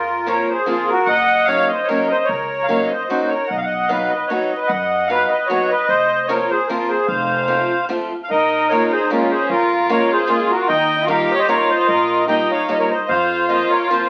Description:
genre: musette waltz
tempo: 150 BPM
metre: 3/4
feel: swing 55% on 8ths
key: Bb minor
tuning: A4 = 439 Hz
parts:
  - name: accordion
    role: melody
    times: 0.0-14.1 s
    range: F4 to G5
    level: -19 LUFS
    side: equal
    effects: light tremolo tuning
  - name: upright bass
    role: bass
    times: 0.0-13.6 s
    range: F1 to F#2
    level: -35 LUFS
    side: equal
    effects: none
  - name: picked steel-string acoustic guitar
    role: accompaniment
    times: 0.3-14.1 s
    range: F3 to F#4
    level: -24 LUFS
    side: equal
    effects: none
  - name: warm violin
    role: second line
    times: 8.3-14.1 s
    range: Db4 to G4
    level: -22 LUFS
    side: equal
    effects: none
room: wet studio reverb, RT60 0.9 s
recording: very old 78 rpm record, vinyl crackle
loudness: -18 LUFS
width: mono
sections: 0.0-14.1 A section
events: none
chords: 0.0 Bbsus2; 1.1 Gb6; 3.5 B; 5.9 Fsus4; 7.1 F; 8.3 Bbm7; 10.7 Ebadd9; 13.1 Fsus4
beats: 0.28 0.68 | 1.08 1.48 1.88 | 2.29 2.69 3.09 | 3.50 3.90 4.31 | 4.71 5.10 5.50 | 5.90 6.29 6.69 | 7.09 7.49 7.90 | 8.30 8.70 9.10 | 9.50 9.90 10.29 | 10.69 11.09 11.48 | 11.88 12.28 12.68 | 13.09 13.48 13.88

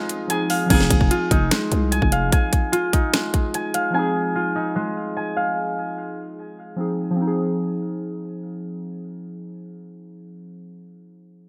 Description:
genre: hip hop, trap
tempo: 148 BPM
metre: 4/4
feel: half-time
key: F minor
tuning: A4 = 445 Hz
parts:
  - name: warbly lo-fi synth keys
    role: accompaniment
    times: 0.0-11.5 s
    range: F3 to Ab4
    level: -29 LUFS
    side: equal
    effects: chorus, low-pass filter
  - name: sweeping resonant pad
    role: sustained chords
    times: 0.0-0.7 s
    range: F3 to Ab4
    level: -44 LUFS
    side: equal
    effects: none
  - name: concert harp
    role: arpeggios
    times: 0.0-7.3 s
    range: Ab3 to Ab5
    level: -26 LUFS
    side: equal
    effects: low-pass filter, delay
  - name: trap drum kit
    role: drums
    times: 0.1-3.8 s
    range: crash cymbal, finger snaps, hi-hat, kick drum, snare drum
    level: -22 LUFS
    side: equal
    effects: none
  - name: growling 808-style bass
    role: bass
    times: 0.7-2.3 s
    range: F1 to C2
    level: -24 LUFS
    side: equal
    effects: none
room: moderate plate reverb, RT60 1.6 s, digital ambience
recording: bright 1980s-style digital production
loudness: -22 LUFS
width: mono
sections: 0.7-7.2 A section; 7.2-10.4 B section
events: break 0.0-0.7; filter sweep 0.7-7.2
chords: 0.0 Fm7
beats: 0.30 | 0.70 1.11 1.51 1.92 | 2.32 2.73 3.13 3.54 | 3.95 4.35 4.76 5.16 | 5.57 5.97 6.38 6.78 | 7.19 7.59 8.00 8.40 | 8.81 9.22 9.62 10.03

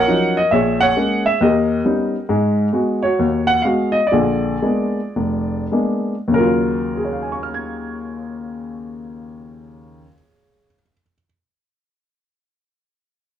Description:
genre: solo jazz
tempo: 95-136 BPM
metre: 4/4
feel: swing 66% on 8ths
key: Eb minor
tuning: A4 = 441 Hz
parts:
  - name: warm baby grand piano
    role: solo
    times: 0.0-11.2 s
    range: F1 to Ab6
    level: -16 LUFS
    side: equal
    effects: none
room: moderate club reverb, RT60 0.5 s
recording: none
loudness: -16 LUFS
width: side -10 dB against mid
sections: 0.0-2.3 A section; 2.3-6.3 B section; 6.3-11.4 C section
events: slowing down 2.3-6.3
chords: 0.0 Ebm9; 0.5 Bbm7b5; 1.4 Eb7b13; 2.3 Abm7; 4.1 Bb7b9; 6.3 Ebm9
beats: 0.07 | 0.51 0.95 1.40 1.84 | 2.28 2.73 3.18 3.64 | 4.12 4.62 5.15 5.72 | 6.33 6.96 7.59 8.22 | 8.85 9.48 10.11 10.74

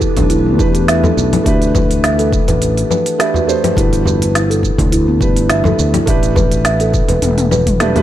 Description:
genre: organic downtempo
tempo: 104 BPM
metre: 4/4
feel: swing 53% on 16ths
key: unclear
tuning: A4 = 440 Hz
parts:
  - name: felt-muted upright piano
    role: accompaniment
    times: 0.0-8.0 s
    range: G3 to C5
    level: -21 LUFS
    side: right 4 dB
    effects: sidechain pumping, tape echo
  - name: warbly tape-like pad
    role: sustained chords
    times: 0.0-8.0 s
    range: E3 to B4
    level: -23 LUFS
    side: left 3 dB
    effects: chorus, built-in reverb, sidechain pumping
  - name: steel tongue drum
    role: arpeggios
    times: 0.0-8.0 s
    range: B3 to E5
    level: -17 LUFS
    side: right 1 dB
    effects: tape echo
  - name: sustaining fretless electric bass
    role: bass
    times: 0.0-8.0 s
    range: E1 to E2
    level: -16 LUFS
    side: left 1 dB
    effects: none
  - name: electronic kick drum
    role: drums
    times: 0.0-7.8 s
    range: none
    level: -17 LUFS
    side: equal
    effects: studio reverb
  - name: organic electronic drum kit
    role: drums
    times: 0.0-8.0 s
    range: congas, hi-hat, shaker, snare drum, toms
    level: -19 LUFS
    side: left 2 dB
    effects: studio reverb
  - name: frame drum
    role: percussion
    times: 0.2-8.0 s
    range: none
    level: -21 LUFS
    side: right 1 dB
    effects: none
room: little or no reverb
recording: none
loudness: -11 LUFS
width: side -12 dB against mid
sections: 0.0-8.0 A section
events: drum fill 7.2-8.0; band accent 7.8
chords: 0.0 Em7; 1.5 Dsus4; 3.8 Gadd9; 6.1 A9sus4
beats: 0.31 0.88 | 1.46 2.04 2.61 3.19 | 3.77 4.34 4.92 5.50 | 6.08 6.65 7.23 7.81

